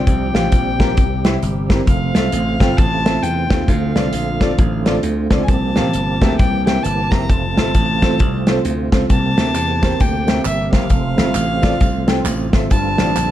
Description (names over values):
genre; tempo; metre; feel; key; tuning
uptempo gospel; 133 BPM; 4/4; swing 62% on 8ths; F major; A4 = 440 Hz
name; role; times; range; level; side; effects
rich violin; melody; 0.0-13.3 s; E5 to Bb5; -23 LUFS; left 2 dB; none
tonewheel organ; sustained chords; 0.0-13.3 s; C3 to G4; -24 LUFS; right 6 dB; slow rotary speaker, overdrive, chorus vibrato
slap bass; bass; 0.0-13.3 s; F1 to E2; -20 LUFS; equal; none
clear concert grand piano; accompaniment; 0.1-13.3 s; G2 to G5; -23 LUFS; left 1 dB; none
natural country drum kit; drums; 0.1-13.3 s; hi-hat, kick drum, snare drum; -17 LUFS; equal; none
tambourine and handclaps; percussion; 9.1-13.3 s; none; -32 LUFS; right 5 dB; none
room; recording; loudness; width
light reverb; dark, warm production; -14 LUFS; side -12 dB against mid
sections
0.0-13.3 A section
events
none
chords
0.1 Csus4; 1.0 C; 1.9 Fmaj7; 3.7 Dm7; 5.5 C7sus4; 6.4 C7; 7.3 F; 9.1 C7; 10.9 F; 12.7 G7sus4